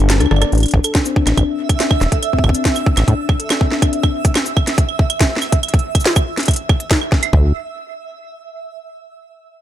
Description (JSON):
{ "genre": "IDM", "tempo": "141 BPM", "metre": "4/4", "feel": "straight", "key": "unclear", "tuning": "A4 = 438 Hz", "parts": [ { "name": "harp-like synth pluck", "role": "arpeggios", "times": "0.0-3.9 s", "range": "B3 to D5", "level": "-21 LUFS", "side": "left 7 dB", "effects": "chorus, ping-pong delay" }, { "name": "deep acid bass", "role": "bass", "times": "0.0-3.1, 7.3-7.5 s", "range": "E1 to A2", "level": "-14 LUFS", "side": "equal", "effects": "none" }, { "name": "organic electronic drum kit", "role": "drums", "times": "0.1-7.3 s", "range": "cabasa, claves, hi-hat, rim click, snare drum, toms", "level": "-19 LUFS", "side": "right 1 dB", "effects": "tape echo" }, { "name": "twinkling granular texture", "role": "texture", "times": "1.4-7.3 s", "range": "E5", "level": "-26 LUFS", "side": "right 7 dB", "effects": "built-in reverb" }, { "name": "electronic kick drum", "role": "drums", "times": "0.7-7.4 s", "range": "none", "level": "-15 LUFS", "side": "equal", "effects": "none" } ], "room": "digital ambience", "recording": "none", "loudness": "-13 LUFS", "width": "side -11 dB against mid", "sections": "0.5-7.3 A section; 7.3-9.0 B section", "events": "kick drops out 0.1-0.5; drum fill 0.1-0.5", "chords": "0.0 Em7 (rootless); 0.5 A5; 3.9 N.C." }